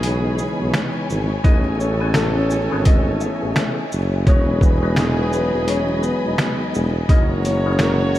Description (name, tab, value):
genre	hip hop, boom-bap hip-hop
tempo	85 BPM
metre	4/4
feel	swing 60% on 16ths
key	unclear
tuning	A4 = 442 Hz
part	percussive tonewheel organ	accompaniment	0.0-8.2 s	C#2 to G#4	-26 LUFS	left 1 dB	chorus vibrato, fast rotary speaker, cassette tape, high-pass filter, low-pass filter
part	warm symphonic string section	sustained chords	0.0-8.2 s	C#5 to B5	-30 LUFS	left 3 dB	high-pass filter, low-pass filter
part	warm horn section	stabs	0.0-8.2 s	E3 to C#5	-29 LUFS	right 3 dB	high-pass filter, low-pass filter, diffuse ambient delay
part	warm tuba	bass	0.0-8.2 s	E1 to B1	-21 LUFS	equal	none
part	trip hop sampler-style drum kit	drums	0.0-8.2 s	hi-hat, kick drum, shaker, snare drum	-19 LUFS	equal	none
part	dark upright piano	melody	1.4-8.2 s	G#3 to E5	-24 LUFS	left 1 dB	high-pass filter, low-pass filter, diffuse ambient delay
room	light reverb, studio ambience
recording	vinyl crackle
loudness	-16 LUFS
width	side -14 dB against mid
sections	0.0-8.2 A section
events	break 0.0-1.4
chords	0.0 C#m7; 1.4 Amaj7; 4.3 Emaj7; 7.1 F#7